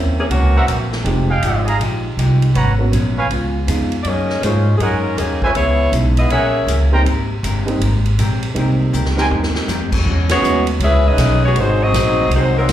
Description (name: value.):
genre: jazz, big band swing.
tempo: 160 BPM.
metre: 4/4.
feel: swing 65% on 8ths.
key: Ab major.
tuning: A4 = 440 Hz.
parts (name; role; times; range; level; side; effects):
dark upright piano; accompaniment; 0.0-10.7 s; G3 to G4; -23 LUFS; right 3 dB; slapback echo.
vintage hollow-body jazz guitar; accompaniment; 0.0-12.7 s; Gb2 to Bb4; -26 LUFS; left 4 dB; slapback echo.
upright bass; bass; 0.0-12.7 s; F1 to Ab2; -16 LUFS; equal; none.
warm saxophone section; melody; 0.2-0.9, 4.0-6.9, 10.3-12.7 s; Eb3 to E5; -18 LUFS; left 2 dB; slapback echo.
swinging big-band drum kit; drums; 0.3-12.7 s; crash cymbal, hi-hat, kick drum, ride cymbal, snare drum, toms; -26 LUFS; right 1 dB; none.
warm trumpet section; stabs; 0.5-9.3 s; Ab4 to Bb5; -22 LUFS; right 2 dB; slapback echo.
bright trombone section; second line; 10.3-12.7 s; C#3 to E4; -24 LUFS; right 7 dB; slapback echo.
room: light reverb.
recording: live gig heard through the venue's PA, club reverb.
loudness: -14 LUFS.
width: side -12 dB against mid.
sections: 0.0-10.1 A section; 10.1-12.7 B section.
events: drum fill 8.9-9.7; band accent 10.2.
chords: 0.0 Gb7#11; 1.1 Fm9; 2.6 Abm11; 3.3 Db7; 4.1 Gb69; 5.6 Dbm7; 6.3 Gb9; 7.1 Abmaj9; 10.1 E69; 11.6 Ab7.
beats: 0.31 0.68 | 1.06 1.43 1.81 2.18 | 2.56 2.93 3.31 3.68 | 4.06 4.43 4.81 5.18 | 5.56 5.93 6.31 6.68 | 7.06 7.43 7.81 8.18 | 8.56 8.93 9.31 9.69 | 10.06 10.44 10.81 11.19 | 11.56 11.94 12.31 12.69.